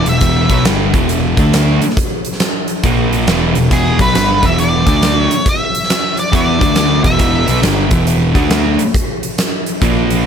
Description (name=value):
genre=blues rock power trio and southern rock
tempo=137 BPM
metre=4/4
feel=swing 64% on 8ths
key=unclear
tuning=A4 = 441 Hz
part: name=octave-fuzz lead guitar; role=melody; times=0.0-0.6, 3.7-7.6 s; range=G#4 to E5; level=-17 LUFS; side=equal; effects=distortion
part: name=thick fuzz guitar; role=riff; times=0.0-10.3 s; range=E2 to E4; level=-14 LUFS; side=right 1 dB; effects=distortion
part: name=fuzz picked electric bass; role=bass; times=0.0-10.2 s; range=E1 to E2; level=-18 LUFS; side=equal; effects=overdrive
part: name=huge arena drum kit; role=drums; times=0.1-10.2 s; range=hi-hat, kick drum, snare drum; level=-15 LUFS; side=equal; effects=none
room=small room ambience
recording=none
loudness=-11 LUFS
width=side -7 dB against mid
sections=0.0-10.3 A section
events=none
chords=0.0 E5; 1.3 D5; 2.8 A#5; 3.3 E5; 4.8 D5; 6.3 E5; 6.5 D5; 7.0 E5; 8.3 D5; 9.8 A#5